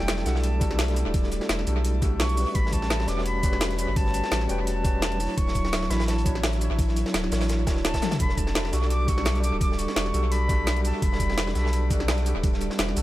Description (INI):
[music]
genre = liquid drum and bass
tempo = 170 BPM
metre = 4/4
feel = swing 54% on 16ths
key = E dorian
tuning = A4 = 444 Hz
[part]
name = bright concert flute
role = melody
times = 0.0-11.9 s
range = F#5 to D6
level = -32 LUFS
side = equal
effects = analog delay
[part]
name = overdriven tine electric piano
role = accompaniment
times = 0.0-13.0 s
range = F#3 to C#5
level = -31 LUFS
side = equal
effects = fast tremolo, tape echo
[part]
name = airy breathy pad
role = sustained chords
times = 0.0-13.0 s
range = F#3 to D5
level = -35 LUFS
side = left 1 dB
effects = chorus
[part]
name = saturated sub bass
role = bass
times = 0.0-13.0 s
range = D1 to B1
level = -26 LUFS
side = equal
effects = none
[part]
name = crunchy breakbeat drum kit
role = drums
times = 0.0-13.0 s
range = hi-hat, snare drum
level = -36 LUFS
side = equal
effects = high-pass filter on hats, studio reverb, high-pass filter on snare, high-pass filter on room, tape echo
[part]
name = drum and bass drum kit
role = drums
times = 0.0-13.0 s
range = hi-hat, shaker, snare drum, toms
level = -30 LUFS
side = equal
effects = overdrive, studio reverb, tape echo
[part]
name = electronic kick drum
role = drums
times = 0.6-12.5 s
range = none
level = -26 LUFS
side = equal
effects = overdrive, studio reverb
[sound]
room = little or no reverb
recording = echo-heavy mix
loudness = -22 LUFS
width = side -15 dB against mid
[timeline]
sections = 0.0-13.0 A section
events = drum fill 8.0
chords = 0.0 Em11; 2.6 A13; 5.4 Dmaj9; 8.2 Em11